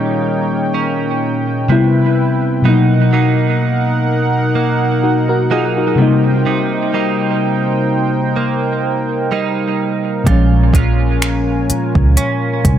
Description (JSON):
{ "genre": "contemporary R&B", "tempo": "63 BPM", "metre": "4/4", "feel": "swing 54% on 16ths", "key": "unclear", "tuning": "A4 = 441 Hz", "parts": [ { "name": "mellow FM electric piano", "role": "accompaniment", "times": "0.0-12.8 s", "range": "Bb2 to A#4", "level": "-16 LUFS", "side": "left 3 dB", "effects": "chorus, tape echo" }, { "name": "warm analog pad", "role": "sustained chords", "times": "0.0-12.8 s", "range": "Bb3 to Ab5", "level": "-20 LUFS", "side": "right 1 dB", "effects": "chorus, sidechain pumping" }, { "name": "direct-recorded clean electric guitar", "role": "arpeggios", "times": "0.0-12.8 s", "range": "Bb2 to F4", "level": "-19 LUFS", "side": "right 6 dB", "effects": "analog chorus, tape echo" }, { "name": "vintage muted fingered electric bass", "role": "bass", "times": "10.3-12.8 s", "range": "Bb1 to Db2", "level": "-14 LUFS", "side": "right 1 dB", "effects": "none" }, { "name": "smooth R&B drum kit", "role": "drums", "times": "10.3-12.8 s", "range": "finger snaps, hi-hat, kick drum", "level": "-14 LUFS", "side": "right 1 dB", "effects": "overdrive" } ], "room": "light reverb", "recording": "echo-heavy mix", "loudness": "-12 LUFS", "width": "side -10 dB against mid", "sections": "0.0-12.8 A section", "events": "none", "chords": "0.0 Eb7/Bb; 1.7 Cmaj7; 2.6 Bmaj7; 6.0 Cm7; 10.3 Bbm7" }